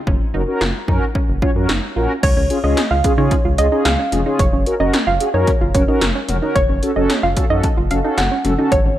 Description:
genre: synth-pop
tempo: 111 BPM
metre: 4/4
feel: straight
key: unclear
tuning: A4 = 440 Hz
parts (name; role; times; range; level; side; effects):
- soft round pluck; arpeggios; 0.1-9.0 s; Db4 to F4; -26 LUFS; right 5 dB; chorus, analog delay
- rubbery square bass; bass; 0.1-9.0 s; F1 to Db3; -20 LUFS; equal; none
- 80s electronic pad drums; drums; 0.1-8.8 s; crash cymbal, hi-hat, kick drum, snare drum, toms; -19 LUFS; equal; gated reverb on snare and toms
- mellow synth brass; accompaniment; 0.3-8.7 s; Db4 to Db5; -20 LUFS; equal; chorus
- soft round pluck; second line; 2.2-8.9 s; Db5 to Gb5; -20 LUFS; right 2 dB; chorus, analog delay
room: light reverb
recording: none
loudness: -14 LUFS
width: side -13 dB against mid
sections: 0.0-2.2 A section; 2.2-9.0 B section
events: none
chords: 0.1 Gb; 2.2 Db; 4.4 Gb; 6.6 Gbm

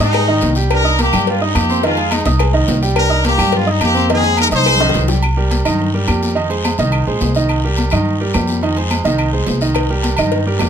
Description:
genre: latin, salsa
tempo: 212 BPM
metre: 4/4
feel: straight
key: C minor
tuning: A4 = 439 Hz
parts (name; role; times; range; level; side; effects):
- clear horn section; melody; 0.0-5.1 s; G3 to C5; -16 LUFS; left 1 dB; none
- bright grand piano; accompaniment; 0.0-10.7 s; Eb3 to Eb6; -19 LUFS; right 4 dB; none
- upright bass; bass; 0.0-10.7 s; Bb1 to Ab2; -17 LUFS; equal; none
- agogo bells and timbales; percussion; 0.0-10.7 s; none; -25 LUFS; right 5 dB; none
- congas; percussion; 0.0-10.7 s; none; -23 LUFS; left 3 dB; none
- cowbell and bongos; percussion; 0.0-5.2, 9.8-10.7 s; none; -23 LUFS; left 8 dB; none
- claves; percussion; 0.1-10.7 s; none; -28 LUFS; left 6 dB; none
- guiro; percussion; 0.1-10.7 s; none; -28 LUFS; left 4 dB; none
room: light reverb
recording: close, detailed microphones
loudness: -13 LUFS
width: side -8 dB against mid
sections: 0.0-5.2 A section; 5.2-10.7 B section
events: drum fill 4.1-5.2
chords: 0.0 Fm7 (rootless); 0.7 Cm9; 1.8 Fm7; 3.0 Cm9; 4.1 Fm7; 5.2 Cm7; 6.4 Fm7; 7.5 Cm7; 8.6 Fm7; 9.8 Cm7

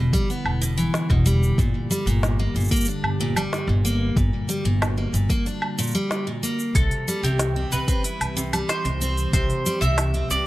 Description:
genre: folktronica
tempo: 93 BPM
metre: 4/4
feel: straight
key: C lydian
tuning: A4 = 441 Hz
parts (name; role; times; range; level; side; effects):
- warbly tape-like pad; sustained chords; 0.0-10.5 s; D3 to G4; -31 LUFS; equal; chorus, built-in reverb
- picked steel-string acoustic guitar; arpeggios; 0.0-10.4 s; Bb2 to E4; -26 LUFS; equal; tape echo
- upright bass; bass; 0.0-10.4 s; E1 to C2; -23 LUFS; equal; none
- electronic kick drum; drums; 0.1-9.5 s; none; -23 LUFS; equal; overdrive
- organic electronic drum kit; drums; 0.1-10.4 s; hi-hat, shaker, snare drum, woodblock; -29 LUFS; equal; overdrive
- mandolin; melody; 6.8-10.5 s; G4 to E5; -27 LUFS; right 1 dB; none
room: light reverb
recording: lossy compression artefacts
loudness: -20 LUFS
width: side -17 dB against mid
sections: 0.0-10.5 A section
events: break 5.5-6.7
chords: 0.0 Em7; 1.6 Gm; 6.7 C

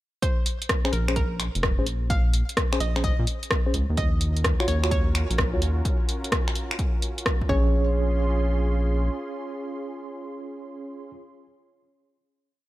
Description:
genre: UK garage, two-step garage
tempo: 128 BPM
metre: 4/4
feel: swing 67% on 16ths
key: Bb minor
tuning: A4 = 439 Hz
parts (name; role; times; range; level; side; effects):
- hollow square pluck; melody; 0.2-11.1 s; Bb4 to F5; -34 LUFS; right 1 dB; chorus, digital delay
- electronic kick drum; drums; 0.2-7.6 s; none; -26 LUFS; equal; none
- garage drum kit; drums; 0.2-7.4 s; finger snaps, hi-hat, rim click; -27 LUFS; equal; none
- mellow tine electric piano; stabs; 0.8-11.1 s; Db4 to Db5; -31 LUFS; right 1 dB; fast stereo tremolo, digital delay
- rubbery square bass; bass; 0.9-9.1 s; F1 to Bb2; -24 LUFS; equal; tube saturation
- warm analog pad; sustained chords; 4.2-11.1 s; Db4 to C6; -36 LUFS; right 1 dB; chorus, sidechain pumping
room: little or no reverb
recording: none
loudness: -22 LUFS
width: side -16 dB against mid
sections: 0.2-7.7 groove; 7.7-11.5 final hit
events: none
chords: 0.2 Bbm; 4.0 Ebm7; 7.5 Bbm9

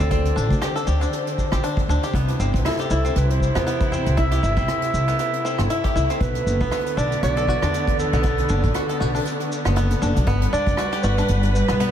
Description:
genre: folktronica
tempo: 118 BPM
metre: 4/4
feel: swing 56% on 16ths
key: unclear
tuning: A4 = 440 Hz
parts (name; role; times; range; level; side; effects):
- mellow clarinet; melody; 0.0-11.9 s; A4 to E5; -26 LUFS; right 2 dB; ping-pong delay
- dark string quartet; sustained chords; 0.0-11.9 s; C3 to F#5; -26 LUFS; left 1 dB; none
- bluegrass banjo; arpeggios; 0.0-11.9 s; B3 to A4; -27 LUFS; left 1 dB; ping-pong delay
- upright bass; bass; 0.0-11.9 s; F#1 to G2; -22 LUFS; equal; none
- soft brush drum kit; drums; 0.0-11.9 s; hi-hat, rim click, shaker; -32 LUFS; right 2 dB; none
- kick drum; drums; 0.1-10.8 s; none; -25 LUFS; equal; none
room: moderate huge ambient reverb, RT60 7.5 s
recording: dreamy mix soaked in reverb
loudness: -18 LUFS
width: side -10 dB against mid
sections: 0.0-10.3 A section; 10.3-11.9 B section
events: kick drops out 9.3-10.3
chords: 0.0 D7sus4; 2.1 Cmaj7; 6.2 Bm7; 10.3 Gmaj7

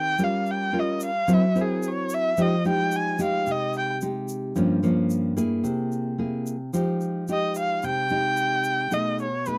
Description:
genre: bossa nova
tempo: 110 BPM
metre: 4/4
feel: straight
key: F minor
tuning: A4 = 440 Hz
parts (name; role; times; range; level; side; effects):
- warm erhu; melody; 0.0-3.9, 7.3-9.6 s; Ab4 to Ab5; -27 LUFS; equal; none
- nylon-string guitar; accompaniment; 0.0-9.6 s; G2 to Bb4; -27 LUFS; equal; none
- egg shaker; percussion; 0.2-9.6 s; none; -45 LUFS; equal; none
room: light reverb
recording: dry, close 1970s-style studio recording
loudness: -25 LUFS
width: mono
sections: 0.0-6.7 A section; 6.7-9.6 B section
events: erhu solo 0.0-6.7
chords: 0.2 Gm7b5; 1.3 Gb7#11; 2.4 Fm9; 4.6 Gm7b5; 5.6 Caug7; 6.7 Fm9; 8.9 B6

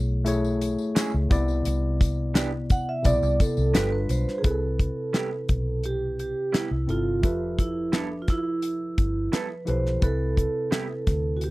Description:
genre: lush 1970s-style soul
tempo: 86 BPM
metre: 4/4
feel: straight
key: C major from 4.4 s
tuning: A4 = 441 Hz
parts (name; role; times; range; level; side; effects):
- tine electric piano; accompaniment; 0.0-11.5 s; C3 to E5; -30 LUFS; left 2 dB; none
- vintage muted fingered electric bass; bass; 0.0-11.5 s; F1 to D2; -27 LUFS; equal; none
- damped 70s drum kit; drums; 0.3-11.5 s; hi-hat, kick drum, snare drum; -23 LUFS; equal; none
- tambourine; percussion; 0.3-4.3 s; none; -43 LUFS; left 14 dB; none
- electric guitar through a small old amp; riff; 1.0-10.9 s; E3 to A4; -31 LUFS; right 5 dB; none
- vibraphone with soft mallets; melody; 2.7-11.5 s; D4 to F#5; -28 LUFS; right 3 dB; none
room: little or no reverb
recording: dry, close 1970s-style studio recording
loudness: -23 LUFS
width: side -20 dB against mid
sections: 0.0-4.4 A section; 4.4-11.5 B section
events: vibraphone solo 0.0-4.4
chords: 0.0 Amaj7; 1.3 Cmaj9; 3.7 G7; 4.4 Cmaj7; 7.2 Fmaj9#11; 10.0 Cmaj7

